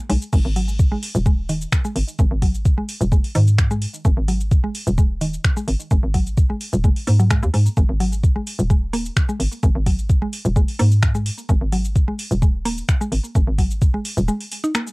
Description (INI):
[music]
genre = minimal techno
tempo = 129 BPM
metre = 4/4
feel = straight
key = unclear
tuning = A4 = 440 Hz
[part]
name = mallet-like synth pluck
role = riff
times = 0.1-14.8 s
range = D#3 to D#4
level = -26 LUFS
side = equal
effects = chorus, cassette tape, sidechain pumping, analog delay
[part]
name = hollow knocking FM bass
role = bass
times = 0.1-14.3 s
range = D#1 to G#2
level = -20 LUFS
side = equal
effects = sidechain pumping
[part]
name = booming analog drum machine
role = drums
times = 0.1-14.9 s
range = crash cymbal, finger snaps, hi-hat, shaker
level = -29 LUFS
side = equal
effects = overdrive
[part]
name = electronic kick drum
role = drums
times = 0.3-13.9 s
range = none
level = -17 LUFS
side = equal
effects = none
[sound]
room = little or no reverb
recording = dry, gritty hardware recording, cassette tape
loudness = -17 LUFS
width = side -27 dB against mid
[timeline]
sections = 0.0-14.9 A section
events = break 14.3-14.9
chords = 0.0 G#5